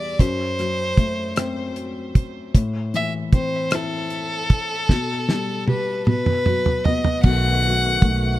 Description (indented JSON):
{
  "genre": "six-eight pop ballad",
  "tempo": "51 BPM (dotted quarters)",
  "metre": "6/8",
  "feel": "straight",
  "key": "unclear",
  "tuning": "A4 = 440 Hz",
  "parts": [
    { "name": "warm violin", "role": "melody", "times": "0.0-8.4 s", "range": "A4 to F#5", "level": "-24 LUFS", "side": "equal", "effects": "ping-pong delay" },
    { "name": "felt-muted upright piano", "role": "accompaniment", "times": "0.0-8.4 s", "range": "E2 to G4", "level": "-26 LUFS", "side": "left 3 dB", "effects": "none" },
    { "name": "damped 70s drum kit", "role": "drums", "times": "0.2-8.2 s", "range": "crash cymbal, hi-hat, kick drum, rim click, snare drum, toms", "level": "-18 LUFS", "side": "right 1 dB", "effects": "none" },
    { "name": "vintage muted fingered electric bass", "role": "bass", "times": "7.2-8.4 s", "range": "B1", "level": "-20 LUFS", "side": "equal", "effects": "none" },
    { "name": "tonewheel organ", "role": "sustained chords", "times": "7.3-8.4 s", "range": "D#3 to F#4", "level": "-28 LUFS", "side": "right 1 dB", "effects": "overdrive, chorus vibrato, fast rotary speaker" }
  ],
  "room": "small room ambience",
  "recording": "none",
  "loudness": "-18 LUFS",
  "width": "side -15 dB against mid",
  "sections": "0.0-7.2 A section; 7.2-8.4 B section",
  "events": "drum fill 4.9-7.2",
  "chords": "0.2 F#dim; 2.5 Am; 4.9 Gadd9/B; 6.1 B5; 7.2 B7"
}